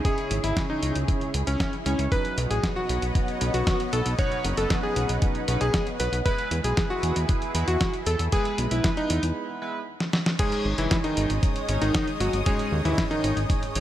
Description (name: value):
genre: italo disco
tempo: 116 BPM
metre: 4/4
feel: straight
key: unclear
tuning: A4 = 437 Hz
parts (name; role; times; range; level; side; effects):
- lush unison pad; sustained chords; 0.0-13.8 s; G#3 to D#6; -33 LUFS; left 1 dB; chorus, phaser
- chorused polysynth; stabs; 0.0-13.8 s; G#2 to C#5; -34 LUFS; right 3 dB; cassette tape, tape echo
- bright electric grand piano; melody; 0.1-13.4 s; D#3 to C#5; -28 LUFS; left 1 dB; tape echo
- dusty soul sampler-style drum kit; drums; 0.1-13.8 s; crash cymbal, hi-hat, snare drum; -30 LUFS; equal; none
- electronic kick drum; drums; 0.1-13.6 s; none; -26 LUFS; equal; overdrive
- fat analog bass; bass; 0.3-13.8 s; F#1 to E2; -26 LUFS; equal; none
room: light reverb, digital ambience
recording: none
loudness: -23 LUFS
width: side -12 dB against mid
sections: 0.0-10.4 A section; 10.4-13.8 B section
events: break 9.4-10.4; drum fill 10.0-10.4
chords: 0.0 C#m; 2.1 Badd9; 6.3 E; 10.4 G#sus4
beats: | 0.05 0.57 1.08 1.60 | 2.12 2.63 3.15 3.67 | 4.19 4.70 5.22 5.74 | 6.26 6.77 7.29 7.81 | 8.32 8.84 9.36 9.88 | 10.39 10.91 11.43 11.95 | 12.46 12.98 13.50